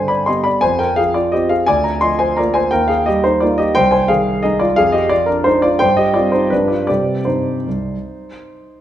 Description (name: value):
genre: classical, piano waltz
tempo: 150-184 BPM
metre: 3/4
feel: rubato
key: C minor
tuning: A4 = 439 Hz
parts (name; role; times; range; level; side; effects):
- warm concert grand piano; solo; 0.0-8.8 s; C2 to C6; -13 LUFS; equal; none
room: moderate recital hall reverb, RT60 1.5 s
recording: minimal, uncompressed stereo recording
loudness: -13 LUFS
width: side -11 dB against mid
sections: 0.0-8.8 A section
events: none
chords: 0.0 G; 0.6 Fm; 1.7 Bb/D; 2.7 Eb; 3.8 Ab/C; 4.8 Ddim/F; 5.8 Cm/G; 6.5 G7; 6.9 Cm